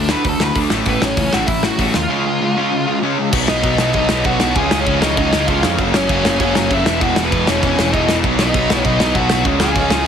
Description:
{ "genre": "punk rock", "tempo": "196 BPM", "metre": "4/4", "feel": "straight", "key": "unclear", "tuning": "A4 = 441 Hz", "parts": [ { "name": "biting lead guitar", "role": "melody", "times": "0.0-10.0 s", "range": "B3 to B5", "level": "-20 LUFS", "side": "equal", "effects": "overdrive" }, { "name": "fuzz guitar", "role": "riff", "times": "0.0-10.1 s", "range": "F#2 to F#4", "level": "-22 LUFS", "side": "equal", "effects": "distortion" }, { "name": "raw garage guitar", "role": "riff", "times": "0.0-10.1 s", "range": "E2 to D4", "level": "-22 LUFS", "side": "right 10 dB", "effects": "overdrive" }, { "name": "tight distorted guitar", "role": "riff", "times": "0.0-10.1 s", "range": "E2 to D4", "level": "-22 LUFS", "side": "left 12 dB", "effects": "distortion" }, { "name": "growling picked electric bass", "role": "bass", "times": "0.0-10.1 s", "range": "E1 to E#2", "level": "-23 LUFS", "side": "equal", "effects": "overdrive" }, { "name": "loose indie drum kit", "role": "drums", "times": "0.1-10.0 s", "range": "crash cymbal, hi-hat, kick drum, snare drum", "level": "-19 LUFS", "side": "equal", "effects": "none" } ], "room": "light reverb", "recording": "heavily compressed radio sound", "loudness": "-14 LUFS", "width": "side -8 dB against mid", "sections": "0.0-3.3 A section; 3.3-10.1 B section", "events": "none", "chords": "0.0 D; 0.7 A; 2.1 C#; 3.3 B; 4.6 C#; 5.8 F#; 6.9 E; 8.2 B; 9.5 C#" }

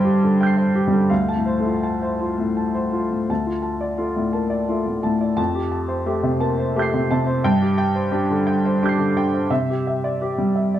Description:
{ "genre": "neoclassical minimalist piano", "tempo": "86 BPM", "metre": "3/4", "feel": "rubato", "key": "D minor", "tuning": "A4 = 438 Hz", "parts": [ { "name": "clear baby grand piano", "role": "solo", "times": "0.0-10.8 s", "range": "D2 to C7", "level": "-18 LUFS", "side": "equal", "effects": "slapback echo" } ], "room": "light reverb", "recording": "none", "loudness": "-18 LUFS", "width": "side -11 dB against mid", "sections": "0.0-3.3 A section; 3.3-10.8 B section", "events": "none", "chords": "0.0 Gsus4; 1.1 Dm7; 3.3 Dm; 5.4 Fadd9; 7.4 Gsus4; 9.5 Cadd9" }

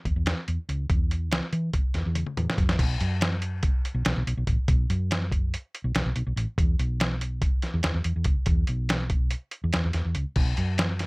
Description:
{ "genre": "math rock and midwest emo", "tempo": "285 BPM (eighths)", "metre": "9/8", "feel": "straight", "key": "unclear", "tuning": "A4 = 440 Hz", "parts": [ { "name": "hollow-body short-scale fingered electric bass", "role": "bass", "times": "0.1-11.1 s", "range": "A1 to E3", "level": "-27 LUFS", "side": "equal", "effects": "none" }, { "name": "lo-fi sampler-style drum kit", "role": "drums", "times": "0.1-11.1 s", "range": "crash cymbal, hi-hat, kick drum, snare drum, toms", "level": "-25 LUFS", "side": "equal", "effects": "none" } ], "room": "little or no reverb", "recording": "none", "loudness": "-24 LUFS", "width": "side -29 dB against mid", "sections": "0.0-2.8 A section; 2.8-11.1 B section", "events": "drum fill 2.2-2.8", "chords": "none" }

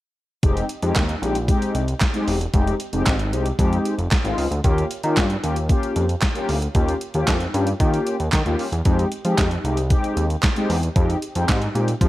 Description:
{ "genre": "early-eighties boogie funk", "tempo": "114 BPM", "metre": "4/4", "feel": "straight", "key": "F minor", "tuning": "A4 = 440 Hz", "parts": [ { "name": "mellow synth brass", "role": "accompaniment", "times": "0.4-12.1 s", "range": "Ab3 to G4", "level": "-24 LUFS", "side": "left 2 dB", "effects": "chorus" }, { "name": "fat analog bass", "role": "bass", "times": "0.4-12.1 s", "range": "E1 to F3", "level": "-22 LUFS", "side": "equal", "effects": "none" }, { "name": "clean 12-bit digital drum machine", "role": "drums", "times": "0.4-12.1 s", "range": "handclaps, hi-hat, kick drum, snare drum", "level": "-21 LUFS", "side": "equal", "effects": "gated reverb" }, { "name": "group handclap", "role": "percussion", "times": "1.0-11.6 s", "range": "none", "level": "-30 LUFS", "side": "right 5 dB", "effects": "none" } ], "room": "digital ambience", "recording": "none", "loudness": "-18 LUFS", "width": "side -16 dB against mid", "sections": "0.4-12.1 A section", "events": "none", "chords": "0.4 Fm9; 4.6 Eb7; 8.9 Fm9" }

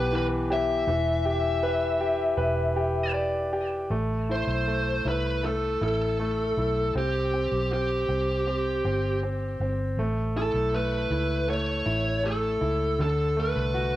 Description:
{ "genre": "pop ballad", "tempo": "79 BPM", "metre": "4/4", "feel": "straight", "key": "unclear", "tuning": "A4 = 440 Hz", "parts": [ { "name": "smooth overdriven lead guitar", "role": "melody", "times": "0.0-14.0 s", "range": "G4 to E5", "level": "-27 LUFS", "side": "left 1 dB", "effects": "none" }, { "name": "clear concert grand piano", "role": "accompaniment", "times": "0.0-14.0 s", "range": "B2 to D5", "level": "-29 LUFS", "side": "equal", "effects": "cassette tape" }, { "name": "vintage muted fingered electric bass", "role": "bass", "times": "0.0-14.0 s", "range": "E1 to D2", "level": "-29 LUFS", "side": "equal", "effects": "none" } ], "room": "light reverb, small room reverb", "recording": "home recording on cassette", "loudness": "-24 LUFS", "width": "side -14 dB against mid", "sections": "0.0-3.9 A section; 3.9-14.0 B section", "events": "none", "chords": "0.0 Em; 0.9 Em7; 3.9 Am; 7.0 C5; 10.0 Aadd9; 13.0 D" }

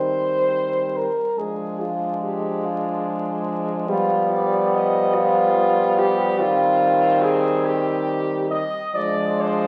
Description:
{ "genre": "classical, lyrical piece for horn quartet", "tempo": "47 BPM (dotted quarters)", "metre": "6/8", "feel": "rubato", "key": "C minor", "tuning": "A4 = 441 Hz", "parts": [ { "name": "warm French horn", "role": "melody", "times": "0.0-9.7 s", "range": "F4 to Eb5", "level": "-24 LUFS", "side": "equal", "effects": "none" }, { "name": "warm French horn", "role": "second line", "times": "0.0-9.7 s", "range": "B3 to D4", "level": "-28 LUFS", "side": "equal", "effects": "none" }, { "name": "mellow French horn", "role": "accompaniment", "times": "0.0-9.7 s", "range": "G3 to Ab3", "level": "-27 LUFS", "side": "equal", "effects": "none" }, { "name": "warm French horn", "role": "bass", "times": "0.0-9.7 s", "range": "Eb3 to F3", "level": "-29 LUFS", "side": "equal", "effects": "none" } ], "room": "wet recital hall reverb, RT60 1.4 s", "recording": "very old 78 rpm record, vinyl crackle", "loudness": "-21 LUFS", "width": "mono", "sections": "0.0-9.7 A section", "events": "none", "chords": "0.0 Cm/Eb; 1.4 Ddim/F; 3.9 G7/F; 6.4 Cm/Eb; 9.0 Ddim/F" }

